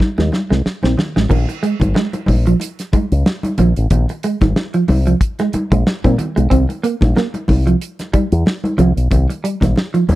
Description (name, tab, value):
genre	funk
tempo	92 BPM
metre	4/4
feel	swing 56% on 16ths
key	unclear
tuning	A4 = 441 Hz
part	damped 70s drum kit	drums	0.0-10.2 s	crash cymbal, hi-hat, kick drum, snare drum	-18 LUFS	equal	none
part	congas	percussion	0.0-10.2 s	none	-22 LUFS	equal	none
part	semi-hollow electric guitar	riff	0.2-10.1 s	Eb3 to C4	-17 LUFS	right 3 dB	none
part	fingered electric bass with an envelope filter	bass	0.2-10.2 s	Ab1 to Bb2	-15 LUFS	left 1 dB	none
room	studio reverb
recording	dry, close 1970s-style studio recording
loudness	-13 LUFS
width	side -16 dB against mid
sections	0.0-1.3 A section; 1.3-10.2 B section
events	drum fill 0.0-1.3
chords	0.0 Fm7 (rootless); 1.3 Bb7sus2; 6.5 C7(no3)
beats	0.00 0.65 | 1.30 1.96 2.61 3.26 | 3.91 4.56 5.21 5.86 | 6.51 7.16 7.81 8.46 | 9.11 9.76